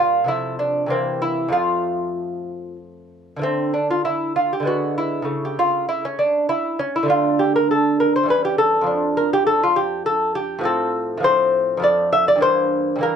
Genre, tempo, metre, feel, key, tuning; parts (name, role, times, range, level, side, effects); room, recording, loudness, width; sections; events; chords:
classical, baroque-style dance for lute; 99 BPM; 3/4; rubato; F major, D minor from 3.4 s; A4 = 441 Hz
lute; solo; 0.0-13.2 s; E2 to E5; -17 LUFS; equal
light reverb; dark, warm production; -17 LUFS; side -7 dB against mid
0.0-3.4 A section; 3.4-13.2 A section
0.3 F/C; 0.9 C7; 1.5 F; 3.4 Dm; 4.7 E7/D; 5.3 A/C#; 7.1 D5; 8.3 C#dim/E; 8.9 Dm/F; 10.7 F/A; 11.8 F; 12.4 C7/G